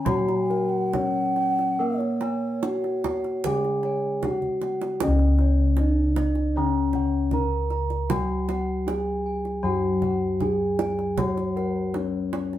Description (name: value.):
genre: Javanese gamelan.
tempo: 77 BPM.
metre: 4/4.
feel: uneven beats.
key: C# pelog barang.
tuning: A4 = 440 Hz.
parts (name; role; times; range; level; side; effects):
gamelan-type bronze metallophone; melody; 0.0-12.6 s; A#3+20c to A#4+20c; -26 LUFS; left 1 dB; none.
breathy mellow bass bansuri; second line; 0.0-4.2 s; C#5 to A#5; -28 LUFS; right 3 dB; none.
gamelan-type bronze metallophone; accompaniment; 0.0-12.6 s; C#3 to A#3+20c; -31 LUFS; left 2 dB; none.
gamelan-type bronze metallophone; arpeggios; 0.0-12.6 s; A#4+20c to A#5+20c; -38 LUFS; right 4 dB; none.
gamelan-type bossed gongs; arpeggios; 0.1-12.4 s; A#4+20c to A#5+20c; -35 LUFS; left 2 dB; none.
gamelan-type bossed gongs; bass; 0.1-12.6 s; C#2 to A#4+20c; -27 LUFS; equal; none.
kendang; percussion; 0.1-12.6 s; none; -32 LUFS; right 4 dB; none.
room: wet studio reverb, RT60 0.8 s.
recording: band playing live in one room.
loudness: -22 LUFS.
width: side -12 dB against mid.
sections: 0.0-5.0 A section; 5.0-12.6 B section.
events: drum fill 4.4-5.0.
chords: none.